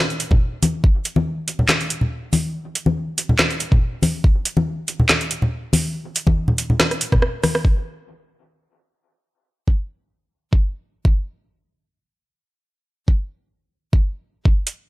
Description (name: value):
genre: dubstep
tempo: 141 BPM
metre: 4/4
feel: swing 54% on 16ths, half-time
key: none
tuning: none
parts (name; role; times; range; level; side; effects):
- garage drum kit; drums; 0.1-7.6, 14.7-14.8 s; handclaps, hi-hat, rim click, snare drum; -19 LUFS; right 1 dB; overdrive
- electronic kick drum; drums; 0.3-0.9, 3.7-14.5 s; none; -16 LUFS; equal; overdrive
- congas; percussion; 0.3-7.5 s; none; -20 LUFS; left 1 dB; none
room: light reverb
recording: dry, gritty hardware recording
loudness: -18 LUFS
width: side -18 dB against mid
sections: 0.0-7.6 A section; 7.6-14.5 B section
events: drum fill 6.8-7.6; break 7.2-7.6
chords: none